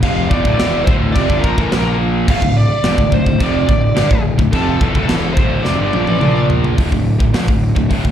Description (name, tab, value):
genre	heavy metal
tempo	106 BPM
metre	4/4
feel	straight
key	D minor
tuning	A4 = 441 Hz
part	high-gain lead guitar	melody	0.0-6.4 s	A4 to F5	-21 LUFS	equal	distortion, slapback echo, tape echo
part	distorted electric guitar	riff	0.0-6.8 s	D2 to Bb3	-21 LUFS	equal	distortion
part	heavy high-gain guitar	riff	0.0-8.1 s	D2 to Bb3	-22 LUFS	left 7 dB	distortion, slapback echo
part	tight distorted guitar	riff	0.0-8.1 s	D2 to Bb3	-22 LUFS	right 8 dB	distortion, slapback echo
part	fuzz picked electric bass	bass	0.0-8.1 s	D1 to Bb1	-19 LUFS	equal	overdrive
part	tight metal drum kit	drums	0.0-8.1 s	china cymbal, crash cymbal, hi-hat, kick drum, snare drum, toms	-17 LUFS	equal	none
room	small room reverb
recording	live gig heard through the venue's PA, club reverb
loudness	-12 LUFS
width	side -10 dB against mid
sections	0.0-6.8 A section; 6.8-8.1 B section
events	drum fill 5.7-6.8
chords	0.0 Dm; 1.7 Bb5; 2.3 Dm; 6.2 Bb5; 6.8 Dm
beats	| 0.02 0.59 1.15 1.71 | 2.27 2.83 3.40 3.96 | 4.52 5.09 5.65 6.21 | 6.78 7.34 7.91